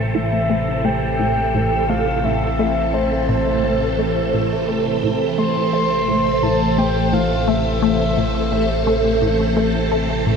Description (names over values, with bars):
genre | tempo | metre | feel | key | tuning
ambient, sequencer-driven space music | 86 BPM | 4/4 | straight | A minor | A4 = 445 Hz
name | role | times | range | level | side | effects
phased string machine | sustained chords | 0.0-10.4 s | C3 to A4 | -19 LUFS | right 1 dB | ensemble chorus, phaser
resonant blip pluck | riff | 0.0-10.4 s | A2 to A3 | -23 LUFS | left 2 dB | chorus, phaser, tape echo
analog drone | bass | 0.0-10.4 s | A1 | -24 LUFS | equal | chorus
soft octave-layered synth lead | melody | 0.2-9.6 s | C5 to C6 | -23 LUFS | left 1 dB | chorus, tape echo
room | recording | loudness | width
wet huge ambient reverb, RT60 8.2 s | none | -16 LUFS | side -6 dB against mid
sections
0.0-10.4 A section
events
none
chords
0.0 Am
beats
0.15 0.85 1.55 | 2.24 2.94 3.64 4.34 | 5.04 5.73 6.43 7.13 | 7.83 8.52 9.22 9.92